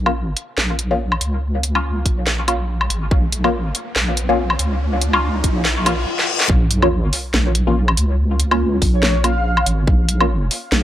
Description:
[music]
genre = deep dubstep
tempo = 142 BPM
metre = 4/4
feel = swing 56% on 16ths, half-time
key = Bb minor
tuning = A4 = 444 Hz
[part]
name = deep soft wobble bass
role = bass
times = 0.0-10.8 s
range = Ab1 to Db2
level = -19 LUFS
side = equal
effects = chorus
[part]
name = riser, reverse cymbal and sub drop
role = sound effects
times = 2.1-8.2 s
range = none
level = -26 LUFS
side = left 2 dB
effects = none
[part]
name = filtered dub chord stab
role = stabs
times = 0.1-10.3 s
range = Bb3 to F4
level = -22 LUFS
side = left 1 dB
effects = phaser, dub echo
[part]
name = garage drum kit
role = drums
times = 0.1-10.8 s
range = hi-hat, snare drum, woodblock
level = -20 LUFS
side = equal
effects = high-pass filter on hats, high-pass filter on toms, high-pass filter on perc, high-pass filter on snare, high-pass filter on room
[part]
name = electronic kick drum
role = drums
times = 2.1-10.0 s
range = none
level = -16 LUFS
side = equal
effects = none
[part]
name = breathy flute-like synth lead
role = melody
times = 8.9-9.7 s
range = Db5 to F5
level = -24 LUFS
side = equal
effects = ensemble chorus, dub echo
[sound]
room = light reverb, digital ambience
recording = dry, gritty hardware recording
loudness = -16 LUFS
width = side -12 dB against mid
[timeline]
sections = 0.0-6.5 A section; 6.5-10.8 B section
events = build-up 0.0-6.5; riser 2.1-6.1; reverse cymbal 5.6-6.5; drum fill 6.2-6.5; drop 6.5-10.8; impact 6.5-8.2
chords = 0.0 Bbm

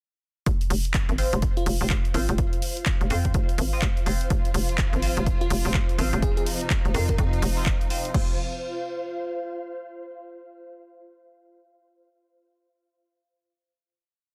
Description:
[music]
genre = bass house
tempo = 125 BPM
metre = 4/4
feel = swing 61% on 16ths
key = unclear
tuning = A4 = 435 Hz
[part]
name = hollow knocking FM bass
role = bass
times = 0.5-8.4 s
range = F1 to F2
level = -28 LUFS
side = equal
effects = tube saturation, sidechain pumping
[part]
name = electronic kick drum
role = drums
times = 0.5-8.3 s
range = none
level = -28 LUFS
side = equal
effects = studio reverb
[part]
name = house drum kit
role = drums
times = 0.5-8.3 s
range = crash cymbal, handclaps, hi-hat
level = -34 LUFS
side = equal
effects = studio reverb
[part]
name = ethereal airy pad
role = texture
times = 2.0-10.0 s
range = F4 to F5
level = -38 LUFS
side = equal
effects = ensemble chorus, built-in reverb, sidechain pumping
[part]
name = band-passed chord stab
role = stabs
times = 1.2-8.3 s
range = C4 to Eb5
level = -36 LUFS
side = equal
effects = phaser, subtle chorus, sidechain pumping, delay
[part]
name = bell-like FM electric piano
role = melody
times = 1.6-7.2 s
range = F4 to Bb4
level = -36 LUFS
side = equal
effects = chorus, delay
[part]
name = rich studio string section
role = sustained chords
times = 4.3-8.4 s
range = C3 to F4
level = -37 LUFS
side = equal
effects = sidechain pumping
[sound]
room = little or no reverb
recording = dense, heavily limited modern master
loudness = -25 LUFS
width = mono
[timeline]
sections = 0.5-8.1 drop; 8.1-10.1 final chord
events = drop 0.5-8.1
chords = 0.5 F5

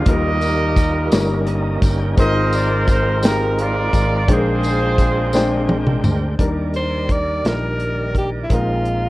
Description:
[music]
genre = slow gospel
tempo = 57 BPM (dotted quarters)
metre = 6/8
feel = straight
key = Eb major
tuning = A4 = 440 Hz
[part]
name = warm horn section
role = melody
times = 0.0-5.7 s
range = F4 to Eb5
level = -21 LUFS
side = right 1 dB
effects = tape echo
[part]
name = clear grand piano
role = accompaniment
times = 0.0-9.1 s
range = G2 to G5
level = -23 LUFS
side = left 2 dB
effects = none
[part]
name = tonewheel organ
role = sustained chords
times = 0.0-9.1 s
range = Eb3 to G5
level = -26 LUFS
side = right 2 dB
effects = slow rotary speaker, overdrive
[part]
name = fingered electric bass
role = bass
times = 0.0-9.1 s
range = G1 to Eb2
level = -21 LUFS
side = equal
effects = none
[part]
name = natural country drum kit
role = drums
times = 0.1-9.0 s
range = hi-hat, kick drum, snare drum, toms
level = -18 LUFS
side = equal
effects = none
[part]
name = tambourine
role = percussion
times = 0.4-6.4 s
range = none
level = -35 LUFS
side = left 4 dB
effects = none
[part]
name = edgy alto saxophone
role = melody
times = 6.8-9.1 s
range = Fb4 to D5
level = -23 LUFS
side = equal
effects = none
[sound]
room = small room ambience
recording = worn, warbling old tape, cassette tape, warbly pitch drift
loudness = -15 LUFS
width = side -18 dB against mid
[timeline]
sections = 0.0-6.4 A section; 6.4-9.1 B section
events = tonewheel organ fill 1.1-2.2; drum fill 5.3-6.4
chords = 0.1 Ebadd9; 1.1 Eb7/G; 2.2 Ab69; 4.3 Bb13; 6.4 Ebmaj7; 8.5 Bb9sus4

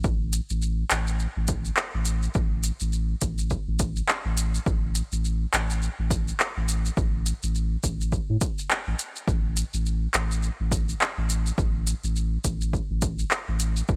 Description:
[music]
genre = organic downtempo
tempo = 104 BPM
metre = 4/4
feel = swing 59% on 16ths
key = unclear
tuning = A4 = 438 Hz
[part]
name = warm sub bass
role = bass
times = 0.0-14.0 s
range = A1 to A2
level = -28 LUFS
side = equal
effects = none
[part]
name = electronic kick drum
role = drums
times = 0.0-14.0 s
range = none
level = -30 LUFS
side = equal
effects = overdrive
[part]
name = organic electronic drum kit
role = drums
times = 0.0-14.0 s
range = handclaps, hi-hat, shaker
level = -30 LUFS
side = equal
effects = overdrive
[sound]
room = little or no reverb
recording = none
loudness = -26 LUFS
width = mono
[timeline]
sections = 0.0-14.0 A section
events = none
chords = none

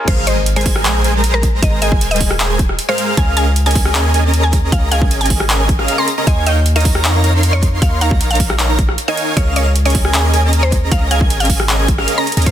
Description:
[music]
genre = future bass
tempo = 155 BPM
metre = 4/4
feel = half-time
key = Db major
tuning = A4 = 438 Hz
[part]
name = swell and impact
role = sound effects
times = 0.0-1.6 s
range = none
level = -27 LUFS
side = equal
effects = none
[part]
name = mallet-like synth pluck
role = melody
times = 0.1-12.5 s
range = Bb4 to C6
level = -22 LUFS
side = equal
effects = chorus, sidechain pumping, ping-pong delay
[part]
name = airy dreamy lead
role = arpeggios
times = 0.1-12.5 s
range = Eb5 to C6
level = -24 LUFS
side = equal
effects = chorus, phaser, sidechain pumping, ping-pong delay
[part]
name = dense compressed supersaw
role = riff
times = 0.1-12.5 s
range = Ab3 to C6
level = -19 LUFS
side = right 1 dB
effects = sidechain pumping
[part]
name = long sustained 808-style bass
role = bass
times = 0.1-12.5 s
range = Eb1 to F2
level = -16 LUFS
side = equal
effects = tube saturation, sidechain pumping, high-pass filter
[part]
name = big-room dance drum kit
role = drums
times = 0.1-12.5 s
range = crash cymbal, handclaps, hi-hat, rim click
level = -19 LUFS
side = right 1 dB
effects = none
[part]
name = electronic kick drum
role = drums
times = 0.1-12.5 s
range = none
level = -16 LUFS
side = equal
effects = overdrive
[sound]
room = little or no reverb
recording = dense, heavily limited modern master, high-pass filter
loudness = -12 LUFS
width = side -11 dB against mid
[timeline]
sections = 0.1-12.5 A section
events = drop 0.1-12.5; impact 0.1-1.6; drum fill 12.3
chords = 0.1 Ab69; 3.2 Db6; 6.3 Eb9sus4; 9.4 Db6

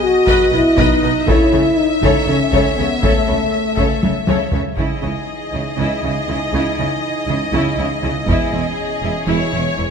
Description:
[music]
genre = cinematic, epic orchestral film score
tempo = 240 BPM (eighths)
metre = 7/8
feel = straight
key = C# minor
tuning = A4 = 440 Hz
[part]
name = clear symphonic violin section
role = melody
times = 0.0-9.9 s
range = C#5 to E5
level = -22 LUFS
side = left 3 dB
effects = none
[part]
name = mellow French horn section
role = sustained chords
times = 0.0-9.9 s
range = E3 to F#4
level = -19 LUFS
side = left 2 dB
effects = none
[part]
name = warm symphonic violin section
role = second line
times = 0.3-9.9 s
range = G#4 to D#5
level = -25 LUFS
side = left 4 dB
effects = none
[part]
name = bright symphonic viola section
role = accompaniment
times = 0.3-9.9 s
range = E4 to B4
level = -24 LUFS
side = equal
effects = none
[part]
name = rich symphonic cello section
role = bass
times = 0.3-9.9 s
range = E2 to C#3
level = -23 LUFS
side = right 4 dB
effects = none
[part]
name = warm studio double bass section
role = bass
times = 0.3-9.9 s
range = E1 to C#2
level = -24 LUFS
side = right 3 dB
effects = none
[part]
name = solo taiko drums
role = drums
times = 0.3-9.2 s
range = none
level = -20 LUFS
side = equal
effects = none
[sound]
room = moderate scoring stage reverb, RT60 2.0 s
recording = none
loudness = -14 LUFS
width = side -6 dB against mid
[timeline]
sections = 0.0-4.8 A section; 4.8-9.9 B section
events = drum fill 4.0-4.8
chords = 0.0 B; 1.3 A/C#; 4.8 C#madd9; 8.3 E6

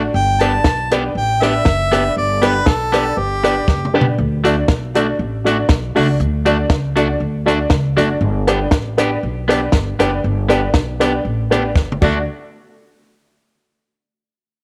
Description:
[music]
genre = ska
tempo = 119 BPM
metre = 4/4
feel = straight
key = D major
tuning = A4 = 441 Hz
[part]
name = honky-tonk upright piano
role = stabs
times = 0.0-12.2 s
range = D4 to D5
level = -22 LUFS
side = equal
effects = none
[part]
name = upright bass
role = bass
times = 0.0-12.2 s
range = F#1 to D2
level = -23 LUFS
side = equal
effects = none
[part]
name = clear harmonica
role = melody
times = 0.1-3.9 s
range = G4 to A5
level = -21 LUFS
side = equal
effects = none
[part]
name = electric guitar at the edge of break-up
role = accompaniment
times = 0.4-12.2 s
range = A3 to G4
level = -24 LUFS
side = equal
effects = tremolo
[part]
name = compact cocktail drum kit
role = drums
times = 0.4-12.1 s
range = crash cymbal, hi-hat, kick drum, snare drum, toms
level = -19 LUFS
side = equal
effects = none
[sound]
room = light reverb, studio reverb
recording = none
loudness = -16 LUFS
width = mono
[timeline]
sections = 0.0-4.2 A section; 4.2-12.3 B section; 12.3-14.3 C section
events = drum fill 3.7-4.2, 11.8-12.3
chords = 0.1 G; 4.2 D; 8.2 G; 12.0 D; 12.3 N.C.

